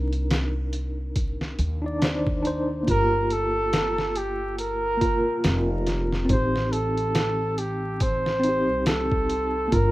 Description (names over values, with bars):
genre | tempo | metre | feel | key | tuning
trip hop | 70 BPM | 4/4 | swing 58% on 16ths | unclear | A4 = 439 Hz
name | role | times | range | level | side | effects
mellow tine electric piano | accompaniment | 0.0-9.9 s | Bb3 to D5 | -28 LUFS | equal | overdrive, tremolo, tape echo
upright bass | bass | 0.0-9.9 s | F1 to Eb2 | -28 LUFS | equal | none
trip hop sampler-style drum kit | drums | 0.1-9.9 s | hi-hat, kick drum, snare drum | -26 LUFS | equal | none
trumpet with bucket mute | melody | 2.9-9.9 s | G4 to C5 | -25 LUFS | right 1 dB | tape echo
room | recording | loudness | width
studio reverb | rough home demo mix, vinyl crackle | -22 LUFS | side -17 dB against mid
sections
0.0-9.9 A section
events
none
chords
0.0 Cm7; 2.9 Gm7; 6.3 Am7b5